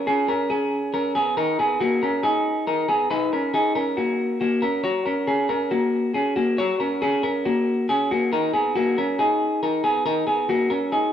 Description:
indie pop; 138 BPM; 4/4; straight; A4 = 445 Hz
semi-hollow electric guitar; solo; 0.0-11.1 s; A#3 to C#5; -20 LUFS; equal; spring reverb
moderate studio reverb, RT60 0.6 s; rough home demo mix; -20 LUFS; side -9 dB against mid
0.0-11.1 A section
0.0 C#5; 1.4 D#m; 4.8 F#; 8.1 D#m

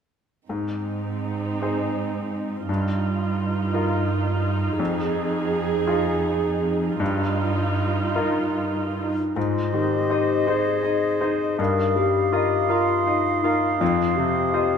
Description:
cinematic, emotional film score for orchestra; 48-58 BPM (dotted quarters); 6/8; rubato; Ab major; A4 = 436 Hz
bright concert grand piano; accompaniment; 0.5-14.8 s; F2 to C5; -26 LUFS; left 2 dB
dark symphonic viola section; accompaniment; 0.5-9.1 s; C4 to Ab4; -26 LUFS; right 4 dB
rich symphonic cello section; bass; 0.5-9.1 s; F2 to Ab2; -27 LUFS; right 3 dB
dark clarinet; second line; 9.0-14.8 s; Eb4 to Bb4; -25 LUFS; left 3 dB
silver concert flute; second line; 9.4-14.8 s; Eb5 to F5; -29 LUFS; left 1 dB
warm cor anglais; second line; 9.4-14.8 s; C5 to Eb5; -27 LUFS; right 9 dB
concert harp; arpeggios; 9.4-14.8 s; F2 to F5; -27 LUFS; left 7 dB
moderate scoring stage reverb, RT60 1.9 s; minimal, uncompressed stereo recording; -21 LUFS; side -7 dB against mid
0.5-9.4 A section; 9.4-14.8 B section
0.5 Ab; 2.7 Ebadd9/G; 4.8 Fm7; 7.0 Ebadd9/G; 9.4 Ab; 11.6 Ebadd9/G; 13.8 F7(no3)

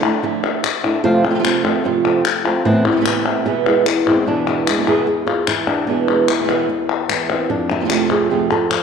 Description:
flamenco; 149 BPM; 4/4; straight; E phrygian dominant; A4 = 439 Hz
flamenco guitar; melody; 0.0-8.8 s; E2 to A4; -18 LUFS; left 1 dB
flamenco guitar; stabs; 0.0-8.7 s; E2 to F4; -20 LUFS; right 8 dB
palmas hand claps; percussion; 0.0-8.8 s; -20 LUFS; left 10 dB
wet echo chamber reverb, RT60 2.1 s; 1960s-style stereo with parts hard left and right; -15 LUFS; side -6 dB against mid
0.0-4.3 A section; 4.3-8.8 B section
0.0 Dmadd9; 1.0 F; 2.7 Amadd9; 3.5 E; 7.5 F

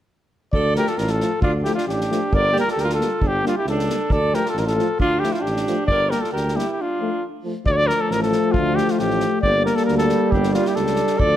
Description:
balkan folk, Balkan brass band; 135 BPM; 2/4; straight; D harmonic minor; A4 = 441 Hz
mellow cornet; melody; 0.5-11.4 s; F4 to D5; -21 LUFS; left 1 dB
breathy alto saxophone; second line; 0.5-7.2, 10.3-11.4 s; D4 to Bb4; -27 LUFS; right 4 dB
mellow tuba; bass; 0.5-11.4 s; G1 to D2; -25 LUFS; equal
unplugged drum kit; percussion; 0.5-11.3 s; kick drum, snare drum; -26 LUFS; equal
mellow euphonium; accompaniment; 0.8-11.4 s; A3 to Bb3; -27 LUFS; left 5 dB
warm trombone; accompaniment; 0.8-11.4 s; F3 to G3; -27 LUFS; right 5 dB
moderate recital hall reverb, RT60 1.5 s; -18 LUFS; side -11 dB against mid
0.5-7.7 A section; 7.7-11.4 A section
break 6.8-7.7
0.5 Dm; 2.3 Gm; 4.1 Dm; 5.9 Gm; 6.8 Dm; 9.4 Gm

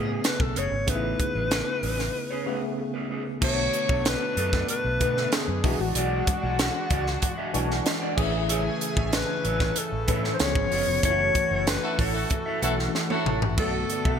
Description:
polished 1980s jazz-funk pop; 94 BPM; 4/4; straight; B dorian; A4 = 442 Hz
breathy alto saxophone; melody; 0.0-14.2 s; F#4 to C#5; -28 LUFS; left 2 dB
tine electric piano; accompaniment; 0.0-14.2 s; C#3 to G#5; -31 LUFS; left 1 dB; overdrive, fast stereo tremolo, ensemble chorus
electric guitar at the edge of break-up; riff; 0.0-14.2 s; C#4 to E5; -34 LUFS; right 3 dB; wide subtle chorus
vintage muted fingered electric bass; bass; 0.0-14.2 s; E#1 to B2; -30 LUFS; equal
crisp fusion drum kit; drums; 0.2-14.2 s; crash cymbal, hi-hat, kick drum, snare drum, toms; -27 LUFS; right 1 dB; gated reverb
chorused pulse-width pad; sustained chords; 3.4-14.2 s; B2 to G#5; -36 LUFS; right 1 dB
clear horn section; second line; 11.8-13.6 s; E4 to A4; -32 LUFS; equal
moderate plate reverb, RT60 1.5 s, small room ambience; bright 1980s-style digital production; -23 LUFS; side -7 dB against mid
0.0-3.4 A section; 3.4-14.2 B section
break 2.1-3.4; tine electric piano fill 7.2-8.5; band accent 11.0-13.6; drum fill 12.9-13.6
0.0 Amaj9; 3.4 Bm7; 5.6 E9; 8.2 Amaj7; 10.4 C#7; 11.0 F#m7; 13.6 Bm7

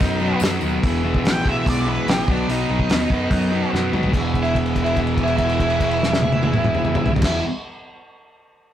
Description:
garage rock duo or trio; 145 BPM; 4/4; straight; E major; A4 = 442 Hz
octave-fuzz lead guitar; melody; 0.0-7.4 s; D4 to G5; -24 LUFS; right 1 dB; distortion
combo organ; sustained chords; 0.0-7.4 s; D#4 to B4; -30 LUFS; left 1 dB
thick fuzz guitar; riff; 0.0-7.4 s; E2 to B3; -22 LUFS; equal; distortion
growling picked electric bass; bass; 0.0-7.4 s; E1 to G#2; -26 LUFS; equal; overdrive
cloth-damped thuddy drum kit; drums; 0.0-7.3 s; crash cymbal, hi-hat, kick drum, snare drum, toms; -22 LUFS; equal
tambourine; percussion; 0.2-0.7 s; -39 LUFS; left 5 dB
light reverb; rough rehearsal-room recording, tube saturation; -17 LUFS; side -10 dB against mid
0.0-4.1 A section; 4.1-7.5 B section
lead electric guitar solo 0.0-4.1; drum fill 3.7-4.1; held note 4.1-7.2
0.0 B; 0.8 E; 2.3 B; 4.1 E

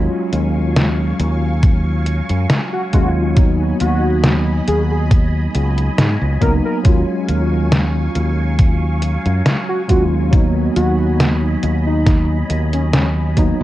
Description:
vaporwave; 69 BPM; 4/4; swing 53% on 16ths; Eb minor; A4 = 439 Hz
mellow tine electric piano; accompaniment; 0.0-13.6 s; Gb3 to F4; -21 LUFS; equal; medium stereo tremolo, ensemble chorus, tape echo
soft string machine; sustained chords; 0.0-13.6 s; Gb3 to Db6; -28 LUFS; equal; phaser, ensemble chorus
fingered electric bass; bass; 0.0-13.6 s; Db2 to Ab2; -17 LUFS; equal; tube saturation
detuned 8-bit digital drum machine; drums; 0.3-13.6 s; hi-hat, snare drum; -17 LUFS; equal; studio reverb
electronic kick drum; drums; 1.6-13.6 s; -14 LUFS; equal; studio reverb
warm velvety synth lead; melody; 2.7-13.1 s; Db4 to Bb4; -23 LUFS; equal; chorus, tape echo
digital ambience; cassette tape; -14 LUFS; side -15 dB against mid
0.0-13.6 A section
0.0 Ebm11; 3.4 Abm7/Eb; 6.9 Ebm11; 10.3 Abm7/Eb

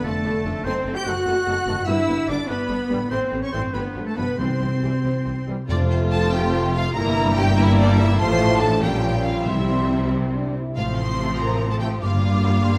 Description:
classical, dramatic, fast romantic movement for symphony orchestra; 96 BPM (dotted quarters); 6/8; rubato; C major, F major from 5.7 s; A4 = 438 Hz
clear symphonic violin section; melody; 0.0-12.8 s; C5 to G6; -33 LUFS; equal
clear oboe; second line; 0.0-5.5 s; A4 to G5; -34 LUFS; equal
hollow large flute ensemble; second line; 0.0-12.8 s; A4 to D6; -34 LUFS; equal
rich symphonic violin section; second line; 0.0-12.8 s; C4 to C5; -33 LUFS; equal
warm chamber viola section; accompaniment; 0.0-12.8 s; E3 to F4; -31 LUFS; equal
bright trombone section; sustained chords; 0.0-12.5 s; G2 to A3; -32 LUFS; equal
warm French horn section; sustained chords; 0.0-12.5 s; A3 to G4; -30 LUFS; equal
concert harp; arpeggios; 0.0-12.8 s; F2 to Bb5; -31 LUFS; equal
rich symphonic cello section; bass; 0.0-12.8 s; F2 to G4; -28 LUFS; equal
rich symphonic double bass section; bass; 0.0-12.8 s; F1 to C2; -28 LUFS; equal
timpani; percussion; 4.4-6.3, 9.5-10.1 s; F2 to C3; -29 LUFS; equal
moderate scoring stage reverb, RT60 1.8 s; -21 LUFS; mono
0.0-5.7 A section; 5.7-12.8 B section
0.0 Dm/F; 0.7 F#dim7; 1.9 G; 3.1 Am7; 3.7 G9; 4.4 C; 5.7 F; 6.9 Edim/G; 8.2 F/A; 8.8 Gm7b5/Bb; 9.5 C; 10.8 F/A; 12.0 Gm7

